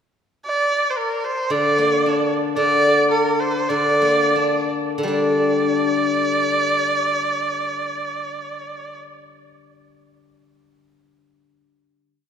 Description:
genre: chinese traditional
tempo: 74-113 BPM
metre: 2/4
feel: rubato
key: unclear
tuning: A4 = 438 Hz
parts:
  - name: rich erhu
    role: melody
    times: 0.5-9.0 s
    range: Bb4 to D5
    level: -20 LUFS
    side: right 2 dB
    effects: none
  - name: steel-string zither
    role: accompaniment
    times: 1.5-11.6 s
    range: D3 to D4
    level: -20 LUFS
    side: left 2 dB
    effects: none
room: wet church reverb, RT60 2.5 s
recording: recorded in a church or concert hall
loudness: -17 LUFS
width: side -8 dB against mid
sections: 0.4-5.1 A section; 5.1-8.2 final chord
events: slowing down 2.6-5.1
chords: none

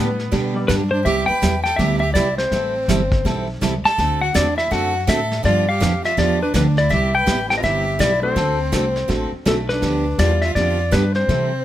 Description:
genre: country, western swing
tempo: 164 BPM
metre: 4/4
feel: swing 63% on 8ths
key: C major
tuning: A4 = 440 Hz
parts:
  - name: clean lap steel guitar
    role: melody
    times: 0.0-11.6 s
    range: A4 to A5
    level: -20 LUFS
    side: left 2 dB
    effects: none
  - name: clear fiddle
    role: second line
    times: 0.0-11.6 s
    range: A3 to B4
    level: -26 LUFS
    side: right 4 dB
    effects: none
  - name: clear upright piano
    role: accompaniment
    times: 0.0-0.7, 7.5-10.4 s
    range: G3 to D5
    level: -29 LUFS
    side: left 1 dB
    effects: none
  - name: picked steel-string acoustic guitar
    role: accompaniment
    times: 0.0-11.5 s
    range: C3 to A4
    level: -24 LUFS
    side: right 4 dB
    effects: none
  - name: upright bass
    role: bass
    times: 0.0-11.6 s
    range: G1 to C3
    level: -21 LUFS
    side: left 1 dB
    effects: none
  - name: vintage brush drum kit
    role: drums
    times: 0.2-11.6 s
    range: brushed snare drum, hi-hat, kick drum, snare drum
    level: -26 LUFS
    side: equal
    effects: none
room: light reverb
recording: none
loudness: -16 LUFS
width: side -12 dB against mid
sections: 0.0-1.1 A section; 1.1-11.6 B section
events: none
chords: 0.0 G; 1.1 Cmaj7; 2.5 Am7; 4.0 D7; 5.4 G7; 6.9 Cmaj7; 8.4 D7; 9.8 G7

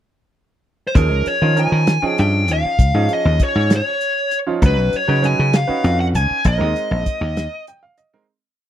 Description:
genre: electric jazz fusion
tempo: 66 BPM (dotted quarters)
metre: 6/8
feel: straight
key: unclear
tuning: A4 = 442 Hz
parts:
  - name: dark smooth lead guitar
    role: melody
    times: 0.9-7.6 s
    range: Bb4 to Ab5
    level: -20 LUFS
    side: left 1 dB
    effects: overdrive, slapback echo
  - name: bright baby grand piano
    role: accompaniment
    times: 0.9-8.3 s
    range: F3 to G5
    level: -24 LUFS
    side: right 6 dB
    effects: none
  - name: dry thumbed slap bass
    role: bass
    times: 0.9-7.5 s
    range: Bb1 to Eb3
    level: -17 LUFS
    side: equal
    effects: none
  - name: damped 70s drum kit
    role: drums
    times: 1.0-8.1 s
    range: hi-hat, kick drum, snare drum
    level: -17 LUFS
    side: equal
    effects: none
room: little or no reverb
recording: dry, close 1970s-style studio recording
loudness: -15 LUFS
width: side -11 dB against mid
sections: 0.0-1.0 pickup bar; 1.0-8.3 A section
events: fade-out 6.5-8.3; grand piano fill 7.4-8.3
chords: 0.0 N.C.; 1.0 Eb9sus4; 4.6 Db9sus4; 6.5 Bb9sus4

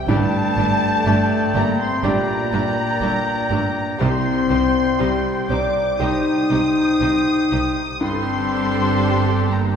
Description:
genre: cinematic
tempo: 60 BPM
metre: 4/4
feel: rubato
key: G minor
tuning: A4 = 438 Hz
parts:
  - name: muted symphonic violin section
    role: melody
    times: 0.0-9.8 s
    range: A5 to Eb6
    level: -25 LUFS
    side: left 1 dB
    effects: none
  - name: bright grand piano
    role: accompaniment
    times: 0.0-9.8 s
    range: C2 to E5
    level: -26 LUFS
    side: equal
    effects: none
  - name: clear clarinet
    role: second line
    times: 0.1-9.8 s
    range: A4 to D5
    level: -31 LUFS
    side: left 1 dB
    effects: none
  - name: muted symphonic violin section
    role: second line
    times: 0.1-9.8 s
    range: G4 to D5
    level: -32 LUFS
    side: left 1 dB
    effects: none
  - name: warm oboe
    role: second line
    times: 0.1-9.8 s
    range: G5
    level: -28 LUFS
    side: left 1 dB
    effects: none
  - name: muted symphonic viola section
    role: accompaniment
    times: 0.1-9.8 s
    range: G3 to Eb4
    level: -29 LUFS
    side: right 1 dB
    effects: none
  - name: dark French horn section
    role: sustained chords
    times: 0.1-9.8 s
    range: Bb2 to D5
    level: -21 LUFS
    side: left 2 dB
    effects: none
  - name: muted chamber double bass section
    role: bass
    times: 0.1-9.8 s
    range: G1 to C2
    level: -27 LUFS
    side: right 3 dB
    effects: none
  - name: muted symphonic cello section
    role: bass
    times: 0.1-9.8 s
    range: G2 to C3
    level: -26 LUFS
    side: right 4 dB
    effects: none
room: wet scoring stage reverb, RT60 2.0 s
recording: heard from further back in the room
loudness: -17 LUFS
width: side -7 dB against mid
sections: 0.0-9.8 A section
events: none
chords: 0.1 Gmadd9; 4.0 Cm; 8.0 Gmadd9

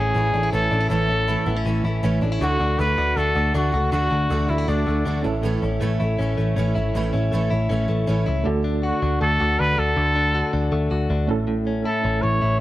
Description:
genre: indie pop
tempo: 159 BPM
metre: 4/4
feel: straight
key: unclear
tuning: A4 = 440 Hz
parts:
  - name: breathy trumpet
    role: melody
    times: 0.0-5.2, 8.8-12.6 s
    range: D4 to C#5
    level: -23 LUFS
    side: equal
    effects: none
  - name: bright reed electric piano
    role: accompaniment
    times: 0.0-12.6 s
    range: A3 to A4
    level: -31 LUFS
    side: right 5 dB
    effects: fast tremolo
  - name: fingerpicked twelve-string acoustic guitar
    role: accompaniment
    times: 0.0-8.5 s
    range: A2 to F#4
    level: -27 LUFS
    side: right 3 dB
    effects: none
  - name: direct-recorded clean electric guitar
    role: arpeggios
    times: 0.0-12.6 s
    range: A2 to F#4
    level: -26 LUFS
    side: left 3 dB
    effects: none
  - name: vintage muted picked electric bass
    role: bass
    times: 0.0-12.6 s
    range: G#1 to D2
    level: -23 LUFS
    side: equal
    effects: none
room: light reverb, studio reverb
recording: none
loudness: -19 LUFS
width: side -15 dB against mid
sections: 0.0-2.4 A section; 2.4-8.5 B section; 8.5-12.6 A section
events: none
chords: 0.0 A; 2.4 D; 5.2 A; 8.5 D; 11.3 A

